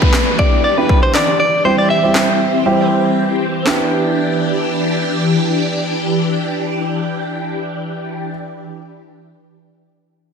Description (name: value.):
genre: dance-pop.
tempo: 119 BPM.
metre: 4/4.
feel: straight.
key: E minor.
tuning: A4 = 440 Hz.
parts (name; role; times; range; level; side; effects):
direct-recorded clean electric guitar; melody; 0.0-2.9 s; B4 to E5; -16 LUFS; left 1 dB; tape echo.
warm concert grand piano; accompaniment; 0.0-8.3 s; G3 to G4; -19 LUFS; right 3 dB; sidechain pumping.
phased string machine; sustained chords; 0.0-8.3 s; E3 to G4; -18 LUFS; left 1 dB; ensemble chorus, phaser, sidechain pumping.
house drum kit; drums; 0.0-3.8 s; handclaps, kick drum, snare drum; -17 LUFS; equal; overdrive.
downlifter; sound effects; 0.0-3.7 s; none; -24 LUFS; left 1 dB; none.
room: wet lush hall reverb, RT60 2.1 s.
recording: dense, heavily limited modern master.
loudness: -14 LUFS.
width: side -6 dB against mid.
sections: 0.0-3.7 A section; 3.7-7.7 B section.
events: break 3.2-3.7.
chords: 0.0 Em7; 1.6 C; 3.7 Em7.